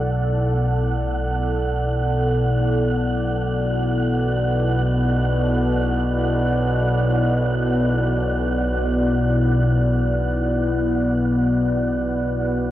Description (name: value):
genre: dark ambient drone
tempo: free time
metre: none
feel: none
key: B minor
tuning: A4 = 440 Hz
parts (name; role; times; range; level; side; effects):
- deep dark ambient pad; sustained chords; 0.0-12.7 s; B3 to D5; -24 LUFS; equal; chorus, built-in reverb
- analog drone; drone; 0.0-12.7 s; B1 to B2; -20 LUFS; equal; chorus
- wind-like tuned noise texture; texture; 0.0-12.7 s; F#5; -30 LUFS; right 4 dB; built-in reverb
room: wet huge ambient reverb, RT60 7.2 s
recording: worn, warbling old tape, cassette tape, warbly pitch drift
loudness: -18 LUFS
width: side -13 dB against mid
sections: 0.0-12.7 A section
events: none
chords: 0.0 Bm